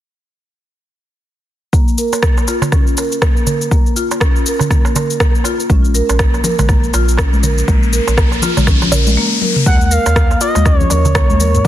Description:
afro house; 121 BPM; 4/4; swing 59% on 16ths; A4 = 439 Hz
marimba with medium hard mallets; arpeggios; 1.7-11.7 s; Bb3 to Bb4; -19 LUFS; equal; vintage 12-bit sampler grit, sidechain pumping, low-pass filter, tape echo
afro-pop drum kit; drums; 1.7-11.7 s; rim click, shaker, toms; -20 LUFS; left 1 dB; soft clipping on snare
electronic kick drum; drums; 1.7-11.7 s; -13 LUFS; equal
darbuka; percussion; 2.1-11.3 s; -21 LUFS; right 4 dB
warm sub bass; bass; 5.7-11.7 s; Bb1 to Eb2; -15 LUFS; equal; sidechain pumping
congas; percussion; 5.7-11.7 s; -22 LUFS; left 4 dB
riser; sound effects; 7.1-9.7 s; -21 LUFS; left 2 dB
expressive portamento lead; melody; 9.7-11.7 s; Db5 to Gb5; -17 LUFS; right 1 dB; chorus, tape echo
light reverb, digital ambience; dense, heavily limited modern master; -11 LUFS; side -12 dB against mid
1.7-9.7 A section; 9.7-11.7 B section
filter sweep on marimba 1.7-9.7; riser 7.1-9.7; drum fill 9.4
1.7 N.C.; 9.7 Eb5

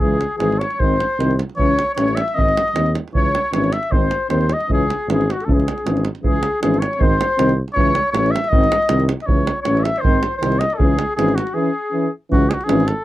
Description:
balkan folk, Balkan brass band; 156 BPM; 2/4; straight; C# harmonic minor; A4 = 444 Hz
cornet with cup mute; melody; 0.0-13.0 s; F#4 to E5; -21 LUFS; equal
mellow clarinet; second line; 0.0-12.1 s; F#4 to E5; -26 LUFS; left 5 dB
dark euphonium; accompaniment; 0.0-12.8 s; G#3 to C#4; -22 LUFS; left 4 dB
warm euphonium; accompaniment; 0.0-12.8 s; D#3 to E3; -24 LUFS; right 5 dB
mellow tuba; bass; 0.0-12.9 s; G#1 to D#2; -22 LUFS; equal
davul; percussion; 0.0-13.0 s; -21 LUFS; right 1 dB
light reverb; dry, close 1970s-style studio recording; -16 LUFS; side -15 dB against mid
0.0-6.2 A section; 6.2-12.3 A section
speeding up 0.0-13.0; break 11.6-12.3
0.0 C#m; 0.8 G#; 1.6 C#m; 2.4 G#; 3.1 C#m; 3.9 G#; 4.7 C#m; 7.0 G#; 7.8 C#m; 8.5 G#; 9.3 C#m; 10.1 G#; 10.8 C#m

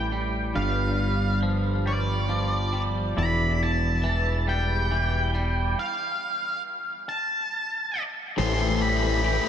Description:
rock; 46 BPM (dotted quarters); 6/8; straight; A minor; A4 = 440 Hz
octave-fuzz lead guitar; melody; 0.0-9.5 s; D5 to C6; -28 LUFS; equal; distortion, analog delay
pedal steel guitar; sustained chords; 0.0-9.5 s; G3 to A5; -35 LUFS; right 1 dB
twangy electric guitar; arpeggios; 0.0-9.5 s; E2 to G4; -30 LUFS; equal; phaser, analog delay
growling fingered electric bass; bass; 0.0-9.4 s; E1 to A1; -26 LUFS; equal; overdrive
tight distorted guitar; riff; 8.4-9.5 s; A2 to E3; -27 LUFS; left 9 dB; distortion
moderate huge ambient reverb, RT60 4.6 s; dreamy mix soaked in reverb; -23 LUFS; side -9 dB against mid
0.0-8.4 A section; 8.4-9.5 B section
stop 5.8-8.4; build-up 8.4-9.5
0.0 Am7; 0.6 G7; 3.2 Em7; 5.8 N.C.; 8.4 Am7

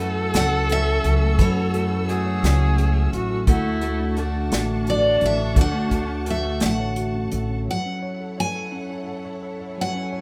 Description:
acoustic folk-pop ballad; 57 BPM (dotted quarters); 6/8; straight; F# minor; A4 = 440 Hz
picked steel-string acoustic guitar; melody; 0.0-10.2 s; C#5 to G#5; -27 LUFS; equal
warm viola; second line; 0.0-7.3 s; D4 to A4; -30 LUFS; equal
tine electric piano; accompaniment; 0.0-10.2 s; D3 to C#5; -30 LUFS; equal
warm symphonic string section; sustained chords; 0.0-10.2 s; A3 to E6; -39 LUFS; equal
picked steel-string acoustic guitar; arpeggios; 0.0-7.8 s; E3 to F#4; -33 LUFS; equal
upright bass; bass; 0.0-7.7 s; A1 to F#2; -25 LUFS; equal
unplugged drum kit; drums; 0.3-7.5 s; hi-hat, kick drum, snare drum; -23 LUFS; equal
light reverb; -22 LUFS; mono
0.0-7.7 A section; 7.7-10.2 A section
0.0 F#m7; 3.5 Dmaj7; 7.7 F#m7

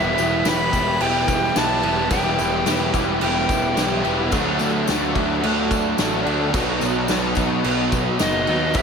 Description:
rock, shoegaze and dream pop; 109 BPM; 4/4; straight; E minor; A4 = 440 Hz
bright alto recorder; melody; 0.0-4.0, 8.2-8.8 s; D#5 to B5; -23 LUFS; left 1 dB; analog delay
granular cloud pad; sustained chords; 0.0-8.8 s; F#4 to B5; -30 LUFS; right 1 dB; built-in reverb
overdriven semi-hollow guitar; riff; 0.0-8.8 s; E2 to G4; -26 LUFS; left 10 dB; ensemble chorus
overdriven semi-hollow guitar; riff; 0.0-8.8 s; B2 to E4; -25 LUFS; right 9 dB; reverse reverb
tight distorted guitar; riff; 0.0-8.8 s; B2 to E4; -26 LUFS; left 1 dB; distortion
fuzz picked electric bass; bass; 0.0-8.8 s; E1 to D#2; -26 LUFS; equal; overdrive
loose indie drum kit; drums; 0.2-8.8 s; crash cymbal, kick drum, snare drum; -24 LUFS; equal
tambourine; percussion; 0.2-8.8 s; -36 LUFS; left 14 dB
moderate lush hall reverb, RT60 1.6 s, small room reverb; -18 LUFS; side -6 dB against mid
0.0-8.8 A section
0.0 Em; 4.3 D; 6.5 B

